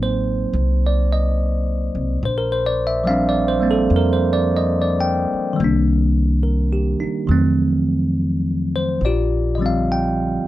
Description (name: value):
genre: jazz ballad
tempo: 71 BPM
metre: 4/4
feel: swing 68% on 8ths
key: Bb major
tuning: A4 = 437 Hz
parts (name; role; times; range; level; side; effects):
- bell-like tine electric piano; accompaniment; 0.0-10.5 s; D3 to G5; -19 LUFS; moving between left 4 dB and right 4 dB; auto-pan
- upright bass; bass; 0.0-10.5 s; A1 to F2; -20 LUFS; equal; none
room: light reverb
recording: none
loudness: -16 LUFS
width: side -15 dB against mid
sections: 0.0-9.0 A section; 9.0-10.5 B section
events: none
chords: 0.0 Ab9 (rootless); 2.2 Bb69; 5.6 Cm7; 7.3 F7b9; 9.0 Bb69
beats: 0.51 1.36 | 2.20 3.05 3.89 4.74 | 5.59 6.43 7.29 8.14 | 9.00 9.86